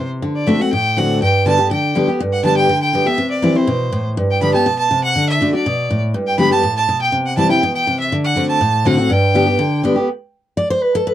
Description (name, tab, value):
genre	bluegrass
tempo	244 BPM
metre	4/4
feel	straight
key	G major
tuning	A4 = 440 Hz
part	clear fiddle	melody	0.0-9.8 s	C5 to B5	-18 LUFS	right 1 dB	none
part	picked steel-string acoustic guitar	accompaniment	0.0-11.1 s	G2 to D5	-16 LUFS	equal	none
room	light reverb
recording	dry, close 1970s-style studio recording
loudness	-14 LUFS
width	side -12 dB against mid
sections	0.0-2.2 A section; 2.2-10.1 A section; 10.1-11.1 B section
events	steel-string acoustic guitar solo 10.1-11.1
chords	0.2 D7; 1.2 G; 3.2 C; 4.2 G; 5.2 D; 6.1 G; 7.1 C; 8.1 D7; 9.1 G; 10.1 N.C.